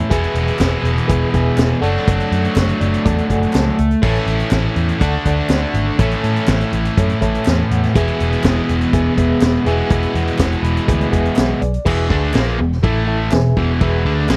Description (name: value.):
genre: classic rock.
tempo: 122 BPM.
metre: 4/4.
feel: straight.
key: E mixolydian.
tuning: A4 = 441 Hz.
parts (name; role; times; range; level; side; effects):
mellow reed electric piano; accompaniment; 0.0-14.4 s; E4 to B5; -26 LUFS; equal; fast tremolo.
distorted electric guitar; riff; 0.0-14.4 s; E2 to F#4; -21 LUFS; equal; distortion.
vintage muted picked electric bass; bass; 0.1-14.4 s; E1 to A2; -21 LUFS; equal; none.
vintage drum kit; drums; 0.1-14.4 s; crash cymbal, hi-hat, kick drum, ride cymbal, snare drum; -21 LUFS; equal; none.
group handclap; percussion; 0.6-14.4 s; none; -36 LUFS; equal; none.
room: light reverb.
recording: dry, close 1970s-style studio recording.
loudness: -17 LUFS.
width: mono.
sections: 0.0-11.9 A section; 11.9-14.4 B section.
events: reed electric piano fill 2.6-4.0, 7.0-7.9, 10.4-11.9.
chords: 0.1 E; 1.8 D/F#; 4.0 A; 5.0 D; 6.0 A; 7.9 E; 12.8 A5; 13.3 E.